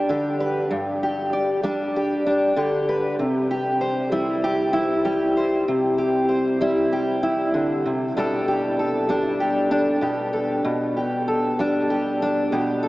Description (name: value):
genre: folk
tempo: 97 BPM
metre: 4/4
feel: straight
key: G major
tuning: A4 = 439 Hz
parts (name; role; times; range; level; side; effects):
- fingerpicked steel-string acoustic guitar; solo; 0.0-12.9 s; G2 to D5; -20 LUFS; equal; analog chorus, analog delay
room: wet huge ambient reverb, RT60 8.1 s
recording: dreamy mix soaked in reverb, small speaker sound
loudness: -20 LUFS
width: side -18 dB against mid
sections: 0.0-12.9 A section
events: none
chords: 0.0 G; 3.2 C; 8.1 Gadd9/B